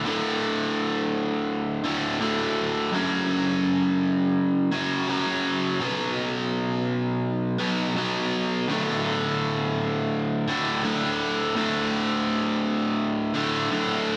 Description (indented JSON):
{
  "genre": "rock",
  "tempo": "83 BPM",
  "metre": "4/4",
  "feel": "straight",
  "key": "D major",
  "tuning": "A4 = 440 Hz",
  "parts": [
    { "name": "biting overdriven guitar", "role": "solo", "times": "0.0-14.2 s", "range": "D2 to B3", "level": "-25 LUFS", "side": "equal", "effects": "delay" }
  ],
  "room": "wet cathedral reverb, RT60 5.2 s",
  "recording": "dreamy mix soaked in reverb",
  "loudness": "-25 LUFS",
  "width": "mono",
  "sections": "0.0-14.2 A section",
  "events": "none",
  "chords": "0.0 D5; 2.9 F#5; 5.8 B5; 8.7 D5"
}